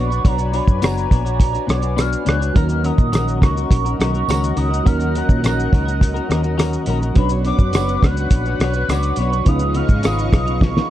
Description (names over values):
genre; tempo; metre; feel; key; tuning
indie pop, bedroom pop; 104 BPM; 4/4; straight; unclear; A4 = 442 Hz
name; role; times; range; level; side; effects
hollow clarinet-like synth lead; melody; 0.0-10.9 s; A#5 to F#6; -25 LUFS; right 1 dB; wide subtle chorus
semi-hollow electric guitar; accompaniment; 0.0-10.9 s; C#3 to C#5; -24 LUFS; left 6 dB; analog chorus, vibrato effect
lush unison pad; sustained chords; 0.0-10.9 s; A#4 to C#6; -30 LUFS; equal; chorus
vintage muted fingered electric bass; bass; 0.0-10.8 s; F#1 to A#2; -20 LUFS; equal; none
cloth-damped thuddy drum kit; drums; 0.1-10.9 s; hi-hat, kick drum, rim click, shaker, snare drum; -16 LUFS; equal; vintage 12-bit sampler grit
tambourine; percussion; 0.8-10.2 s; none; -39 LUFS; right 7 dB; none
soft electric-piano-like synth keys; accompaniment; 2.5-10.9 s; E#3 to B4; -27 LUFS; right 7 dB; chorus, cassette tape
room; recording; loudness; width
little or no reverb; dark, warm production; -15 LUFS; side -13 dB against mid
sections
0.0-10.9 A section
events
drum fill 10.6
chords
0.0 Bmadd9; 2.6 D#m7; 7.2 Bmadd9; 9.5 C#9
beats
| 0.25 0.82 1.40 1.98 | 2.55 3.13 3.71 4.28 | 4.86 5.43 6.01 6.59 | 7.16 7.74 8.31 8.89 | 9.47 10.04 10.62